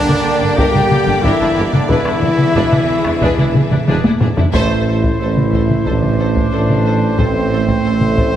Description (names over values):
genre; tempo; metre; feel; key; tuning
cinematic, epic orchestral film score; 91 BPM; 4/4; straight; A minor from 4.5 s; A4 = 440 Hz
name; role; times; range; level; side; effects
rich symphonic violin section; melody; 0.0-8.3 s; D4 to C5; -25 LUFS; left 2 dB; none
silver concert flute; second line; 0.0-3.8 s; D5 to G5; -24 LUFS; left 2 dB; none
warm symphonic violin section; second line; 0.0-8.3 s; A4 to G5; -32 LUFS; left 3 dB; none
rich symphonic viola section; accompaniment; 0.0-8.3 s; Bb3 to A4; -26 LUFS; equal; none
dark trombone section; sustained chords; 0.0-8.4 s; A2 to Bb3; -24 LUFS; right 3 dB; none
rich symphonic string section; sustained chords; 0.0-8.4 s; A3 to G5; -27 LUFS; left 1 dB; none
warm French horn section; sustained chords; 0.0-8.4 s; C4 to G4; -20 LUFS; left 4 dB; none
bright trumpet; stabs; 0.0-8.4 s; D4 to C5; -23 LUFS; right 1 dB; none
dark symphonic cello section; bass; 0.0-8.4 s; A2 to G3; -24 LUFS; right 2 dB; none
rich symphonic double bass section; bass; 0.1-8.4 s; E1 to A1; -22 LUFS; right 2 dB; none
taiko ensemble; drums; 0.1-8.4 s; none; -17 LUFS; left 1 dB; none
warm tuba; bass; 0.6-8.4 s; E1 to A1; -20 LUFS; right 3 dB; none
room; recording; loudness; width
moderate scoring stage reverb, RT60 1.5 s; heavily compressed radio sound; -12 LUFS; side -10 dB against mid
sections
0.0-4.5 A section; 4.5-8.4 B section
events
drum fill 3.9-4.5; band accent 4.5-5.2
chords
0.0 Gm; 1.9 E7; 4.5 Am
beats
0.58 1.24 | 1.90 2.56 3.22 3.88 | 4.54 5.20 5.86 6.52 | 7.18 7.85